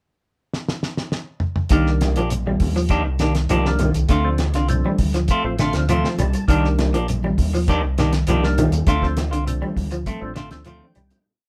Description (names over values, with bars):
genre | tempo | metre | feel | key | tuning
afrobeat | 101 BPM | 4/4 | straight | C dorian | A4 = 440 Hz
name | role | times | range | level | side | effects
cloth-damped thuddy drum kit | drums | 0.5-11.2 s | hi-hat, kick drum, snare drum, toms | -25 LUFS | equal | none
percussive tonewheel organ | accompaniment | 1.7-11.2 s | Eb3 to A5 | -28 LUFS | equal | slow rotary speaker, chorus vibrato
electric guitar through a small old amp | arpeggios | 1.7-11.2 s | D3 to G3 | -26 LUFS | equal | none
semi-hollow electric guitar | stabs | 1.7-11.1 s | Eb3 to G4 | -27 LUFS | equal | none
deep dub fingered electric bass | bass | 1.7-11.1 s | A1 to Eb2 | -24 LUFS | equal | none
congas | percussion | 1.7-11.2 s | none | -31 LUFS | equal | none
shekere | percussion | 1.7-11.3 s | none | -31 LUFS | equal | none
room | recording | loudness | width
light reverb | band playing live in one room | -20 LUFS | mono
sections
0.0-1.7 pickup bar; 1.7-11.3 groove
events
drum fill 0.5-1.7, 10.8-11.3; tonewheel organ fill 5.3-6.5, 10.4-11.3; fade-out 8.9-11.3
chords
0.0 N.C.; 1.7 Cm9; 4.1 Dm7; 6.5 Cm9; 8.9 Dm7